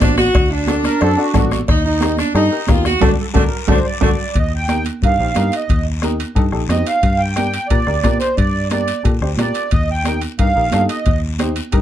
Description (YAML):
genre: latin, cumbia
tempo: 179 BPM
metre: 4/4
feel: straight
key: unclear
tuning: A4 = 439 Hz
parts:
  - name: warm saxophone section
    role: melody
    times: 0.0-4.1 s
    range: A3 to F#4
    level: -18 LUFS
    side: right 1 dB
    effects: plate reverb
  - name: warm upright piano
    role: accompaniment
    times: 0.0-11.8 s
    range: D4 to C5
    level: -23 LUFS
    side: left 3 dB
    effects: none
  - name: fingered electric bass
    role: bass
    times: 0.0-11.8 s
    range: A1 to Bb2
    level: -20 LUFS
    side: equal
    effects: none
  - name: bombo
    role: percussion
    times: 0.0-11.8 s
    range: none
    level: -18 LUFS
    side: left 1 dB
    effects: none
  - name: congas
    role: percussion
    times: 0.0-11.8 s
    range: none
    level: -24 LUFS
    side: right 5 dB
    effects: none
  - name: cowbell and timbales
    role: percussion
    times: 0.0-11.8 s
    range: none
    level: -28 LUFS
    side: right 7 dB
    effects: none
  - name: guiro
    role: percussion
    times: 0.0-11.8 s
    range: none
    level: -33 LUFS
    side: left 7 dB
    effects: none
  - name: accordion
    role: second line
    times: 0.8-11.2 s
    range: F#4 to G5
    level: -20 LUFS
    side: right 3 dB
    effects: light tremolo tuning
room: light reverb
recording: dark, warm production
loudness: -14 LUFS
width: side -11 dB against mid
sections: 0.0-4.4 A section; 4.4-11.8 B section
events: band accent 3.0-4.4; drum fill 3.4-4.4; accordion solo 4.4-11.8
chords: 0.0 D; 1.7 Eb; 3.0 D; 4.4 Eb; 7.0 Gm; 9.7 Eb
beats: 0.02 | 0.35 0.69 1.02 1.35 | 1.69 2.02 2.35 2.69 | 3.02 3.35 3.69 4.02 | 4.36 4.69 5.03 5.36 | 5.69 6.03 6.36 6.70 | 7.03 7.37 7.70 8.04 | 8.37 8.71 9.04 9.38 | 9.71 10.05 10.38 10.72 | 11.06 11.39 11.73